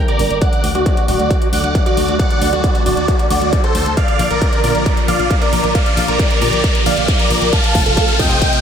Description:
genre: uplifting trance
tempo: 135 BPM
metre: 4/4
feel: straight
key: unclear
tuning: A4 = 440 Hz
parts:
  - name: big supersaw lead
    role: melody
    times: 0.0-8.6 s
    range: F#4 to A5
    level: -17 LUFS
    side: right 1 dB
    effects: phaser, cassette tape, sidechain pumping, low-pass filter, dub echo
  - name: analog string pad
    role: sustained chords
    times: 0.0-8.6 s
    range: C3 to G4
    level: -23 LUFS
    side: left 2 dB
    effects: ensemble chorus, phaser, sidechain pumping
  - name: riser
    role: sound effects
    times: 0.1-8.6 s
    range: none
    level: -22 LUFS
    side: equal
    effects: none
  - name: electronic hi-hat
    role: drums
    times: 0.1-8.6 s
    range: none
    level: -28 LUFS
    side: left 2 dB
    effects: high-pass filter on hats, small room ambience
  - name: solid FM bass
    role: bass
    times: 0.2-8.4 s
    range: D1 to Bb2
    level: -21 LUFS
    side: equal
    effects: sidechain pumping
  - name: electronic kick drum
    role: drums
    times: 0.4-8.5 s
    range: none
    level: -16 LUFS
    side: equal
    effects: distortion, small room ambience
room: light reverb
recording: none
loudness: -12 LUFS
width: side -8 dB against mid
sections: 0.0-8.6 A section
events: build-up 0.0-8.6; riser 0.1-8.6; drum fill 4.0-8.6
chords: 0.4 D; 4.0 Bb; 7.5 F

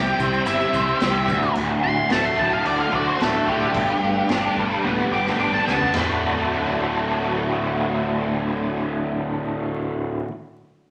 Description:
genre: psychedelic rock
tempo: 110 BPM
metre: 4/4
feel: straight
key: D mixolydian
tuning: A4 = 441 Hz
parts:
  - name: octave-fuzz lead guitar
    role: melody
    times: 0.0-5.9 s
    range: G4 to D6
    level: -26 LUFS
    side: equal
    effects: distortion
  - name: soft string machine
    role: sustained chords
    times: 0.0-10.2 s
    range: F#3 to G4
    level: -33 LUFS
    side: equal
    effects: ensemble chorus
  - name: overdriven electric guitar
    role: riff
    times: 0.0-10.3 s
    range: D2 to C5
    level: -24 LUFS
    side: equal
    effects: rotary speaker
  - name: fuzz fingered electric bass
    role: bass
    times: 0.0-10.2 s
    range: D1 to D2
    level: -32 LUFS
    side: equal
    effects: overdrive
  - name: maracas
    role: percussion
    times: 0.1-1.5 s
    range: none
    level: -45 LUFS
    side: equal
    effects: none
  - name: vintage drum kit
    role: drums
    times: 0.2-6.1 s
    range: crash cymbal, hi-hat, kick drum, snare drum, toms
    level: -31 LUFS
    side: equal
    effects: none
room: wet large studio reverb, RT60 1.0 s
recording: vinyl crackle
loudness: -22 LUFS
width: mono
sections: 0.0-5.9 A section; 5.9-10.3 B section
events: lead electric guitar solo 0.0-5.9; drum fill 4.8-5.9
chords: 0.0 C; 1.3 D; 3.7 Gadd9; 5.9 D

